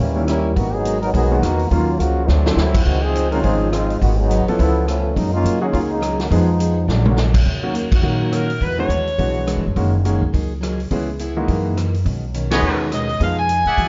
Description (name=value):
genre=jazz, big band swing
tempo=209 BPM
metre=4/4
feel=swing 59% on 8ths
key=Eb minor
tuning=A4 = 440 Hz
part: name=clear trombone section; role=second line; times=0.0-7.2 s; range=Db3 to Bb4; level=-23 LUFS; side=equal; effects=none
part: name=picked plugged-in acoustic archtop guitar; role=accompaniment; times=0.0-13.9 s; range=Gb2 to Bb4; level=-29 LUFS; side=equal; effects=none
part: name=upright bass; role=bass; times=0.0-13.9 s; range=Gb1 to Db3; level=-22 LUFS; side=equal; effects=none
part: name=clear baby grand piano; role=accompaniment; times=0.2-13.4 s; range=D3 to A4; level=-26 LUFS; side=equal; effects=none
part: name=swinging big-band drum kit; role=drums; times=0.3-13.9 s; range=crash cymbal, hi-hat, kick drum, ride cymbal, rim click, snare drum, toms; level=-26 LUFS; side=equal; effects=none
part: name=bright saxophone section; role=melody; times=8.0-9.6, 12.5-13.9 s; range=Gb4 to Ab5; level=-24 LUFS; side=equal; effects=none
part: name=clear trumpet section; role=stabs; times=12.5-13.9 s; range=Ab4 to Gb5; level=-25 LUFS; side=equal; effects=none
room=moderate recital hall reverb, RT60 1.5 s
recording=dark, warm production, nothing above 7.4 kHz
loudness=-18 LUFS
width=mono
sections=0.0-7.5 A section; 7.5-13.9 B section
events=trombone section solo 0.0-7.5; drum fill 2.3, 6.9; band accent 7.9, 12.5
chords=0.0 Eb7b9; 0.6 Abm9; 1.7 Ebm9; 2.3 D9; 2.9 Dbmaj9; 4.0 Abm7; 4.6 Db7alt; 5.2 Gb69; 6.3 Fm7b5; 6.9 Bb7alt; 7.5 Ebm7; 8.6 E9; 9.8 Gb69; 10.9 Dbm7; 11.5 Gb13; 12.1 B69; 13.2 Fm7b5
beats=0.27 | 0.56 0.85 1.14 1.42 | 1.71 2.00 2.29 2.57 | 2.86 3.15 3.44 3.72 | 4.01 4.30 4.59 4.87 | 5.16 5.45 5.73 6.02 | 6.31 6.59 6.88 7.17 | 7.46 7.74 8.03 8.32 | 8.61 8.89 9.18 9.47 | 9.75 10.04 10.33 10.62 | 10.90 11.19 11.48 11.76 | 12.05 12.34 12.62 12.91 | 13.20 13.48 13.77